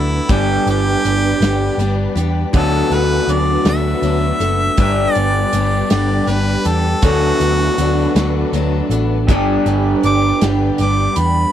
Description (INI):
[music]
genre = folk rock and heartland rock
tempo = 53 BPM (dotted quarters)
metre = 6/8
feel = straight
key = G major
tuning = A4 = 440 Hz
[part]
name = bright harmonica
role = melody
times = 0.0-11.5 s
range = E4 to D6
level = -20 LUFS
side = equal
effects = none
[part]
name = picked steel-string acoustic guitar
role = accompaniment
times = 0.0-11.5 s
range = G2 to A4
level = -22 LUFS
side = left 6 dB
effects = none
[part]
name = warm symphonic string section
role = sustained chords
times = 0.0-11.5 s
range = D4 to B4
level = -27 LUFS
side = left 1 dB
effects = none
[part]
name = electric guitar through a small old amp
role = riff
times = 0.0-11.5 s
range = G2 to A4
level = -19 LUFS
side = right 2 dB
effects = none
[part]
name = hollow-body short-scale picked electric bass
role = bass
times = 0.0-11.4 s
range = F#1 to E2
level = -18 LUFS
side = equal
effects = none
[part]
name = natural country drum kit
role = drums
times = 0.3-11.3 s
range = hi-hat, kick drum, snare drum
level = -17 LUFS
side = equal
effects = none
[sound]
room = little or no reverb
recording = dry, close 1970s-style studio recording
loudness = -13 LUFS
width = side -10 dB against mid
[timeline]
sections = 0.0-11.5 A section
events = harmonica solo 0.0-11.5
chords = 0.3 G; 2.5 D6; 4.8 G; 7.0 D6; 9.3 G